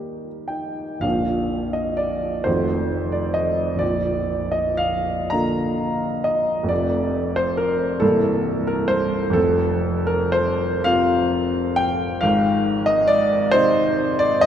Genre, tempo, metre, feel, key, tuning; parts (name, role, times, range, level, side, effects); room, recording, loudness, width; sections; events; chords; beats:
classical, romantic nocturne for solo piano; 34-47 BPM (dotted quarters); 6/8; rubato; Bb major; A4 = 441 Hz
warm grand piano; solo; 0.0-14.5 s; Bb0 to Bb5; -18 LUFS; equal
wet cathedral reverb, RT60 5.3 s; in a vast, echoing space; -18 LUFS; side -9 dB against mid
0.0-1.0 A section; 1.0-14.5 B section
0.0 Eb; 1.0 Bb; 2.5 F7b9; 3.8 Bb; 6.7 F; 8.0 C7; 9.4 F5; 12.2 Ab
| 1.05 2.47 | 3.82 5.33 | 6.70 8.02 | 9.37 10.87 | 12.24 13.54